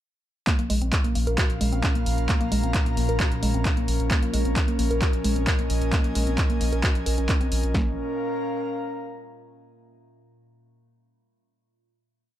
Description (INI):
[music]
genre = driving peak-time techno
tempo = 132 BPM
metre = 4/4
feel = straight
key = Bb minor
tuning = A4 = 440 Hz
[part]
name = woody wave-folded pluck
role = riff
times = 0.5-8.0 s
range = Ab3 to Bb4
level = -30 LUFS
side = equal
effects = chorus, overdrive, sidechain pumping, ping-pong delay
[part]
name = metallic inharmonic drone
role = drone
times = 0.9-7.8 s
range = Bb2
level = -35 LUFS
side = equal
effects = chorus, built-in reverb, phaser, sidechain pumping
[part]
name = punchy analog drum machine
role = drums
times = 0.5-7.7 s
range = handclaps, hi-hat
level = -29 LUFS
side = right 1 dB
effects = sidechain pumping on hats
[part]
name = techno drum kit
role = drums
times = 0.5-7.9 s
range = kick drum, snare drum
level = -25 LUFS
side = equal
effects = none
[part]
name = airy breathy pad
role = texture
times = 0.5-9.5 s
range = Db4 to Bb5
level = -30 LUFS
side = equal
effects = chorus, sidechain pumping
[part]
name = saturated sub bass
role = bass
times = 0.6-8.0 s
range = Bb1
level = -27 LUFS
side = equal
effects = overdrive, sidechain pumping, low-pass filter
[sound]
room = little or no reverb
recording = dark, warm production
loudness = -21 LUFS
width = side -12 dB against mid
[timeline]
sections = 0.5-7.7 drop; 7.7-9.6 final chord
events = drop 0.5-7.7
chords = 0.5 Bbm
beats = | 0.47 0.93 1.38 1.83 | 2.29 2.74 3.20 3.65 | 4.11 4.56 5.02 5.47 | 5.93 6.38 6.83 7.29 | 7.74 8.20 8.65 9.11